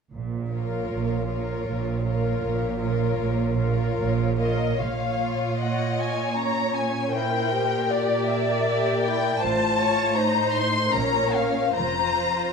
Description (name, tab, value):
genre	classical, slow romantic movement for string orchestra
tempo	77 BPM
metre	3/4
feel	uneven beats, rubato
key	Bb minor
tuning	A4 = 440 Hz
part	warm studio cello section	bass	0.1-12.5 s	F2 to Bb2	-29 LUFS	right 4 dB	none
part	warm studio double bass section	bass	0.1-5.6, 9.4-12.5 s	F1 to Bb1	-29 LUFS	right 6 dB	none
part	dark studio violin section	melody	0.5-12.5 s	Db5 to C6	-27 LUFS	left 5 dB	none
part	warm studio violin section	second line	0.5-12.5 s	Db4 to Eb5	-28 LUFS	left 4 dB	none
part	rich studio viola section	accompaniment	0.5-12.5 s	F4 to D5	-30 LUFS	right 3 dB	none
room	moderate scoring stage reverb, RT60 1.8 s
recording	dark, warm production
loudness	-22 LUFS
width	side -5 dB against mid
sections	0.1-4.8 A section; 4.8-12.5 B section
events	none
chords	0.1 Bbm; 7.1 C7/Bb; 9.4 F/A; 10.9 Bbm; 11.8 F5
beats	| 0.12 0.90 1.67 | 2.42 3.19 3.97 | 4.80 5.61 6.38 | 7.14 7.90 8.65 | 9.41 10.16 10.93 | 11.76